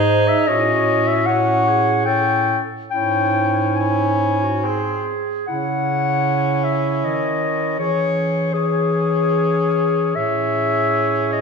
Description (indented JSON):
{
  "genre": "classical, lyrical piece for single-reed quartet",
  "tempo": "68-82 BPM",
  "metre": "3/4",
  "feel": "rubato",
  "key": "C# minor",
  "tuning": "A4 = 440 Hz",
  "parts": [
    { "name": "dark clarinet", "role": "melody", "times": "0.0-11.4 s", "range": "G#4 to G#5", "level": "-20 LUFS", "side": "left 5 dB", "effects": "none" },
    { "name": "warm clarinet", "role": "second line", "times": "0.0-11.4 s", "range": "E4 to A4", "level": "-24 LUFS", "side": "right 6 dB", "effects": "none" },
    { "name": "clear tenor saxophone", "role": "accompaniment", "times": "0.0-11.4 s", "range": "B#3 to D#4", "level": "-23 LUFS", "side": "right 1 dB", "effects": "none" },
    { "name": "mellow bass clarinet", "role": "bass", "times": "0.0-11.4 s", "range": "G#2 to E3", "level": "-23 LUFS", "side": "right 1 dB", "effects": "none" }
  ],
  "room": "wet recital hall reverb, RT60 1.6 s",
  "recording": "recorded in a church or concert hall",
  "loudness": "-16 LUFS",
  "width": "side -5 dB against mid",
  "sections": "0.0-5.5 A section; 5.5-11.4 B section",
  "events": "none",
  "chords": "0.5 F#m/A; 2.9 C#m/G#; 4.6 G#; 5.5 C#m; 7.8 C#m/E; 10.2 Amaj7"
}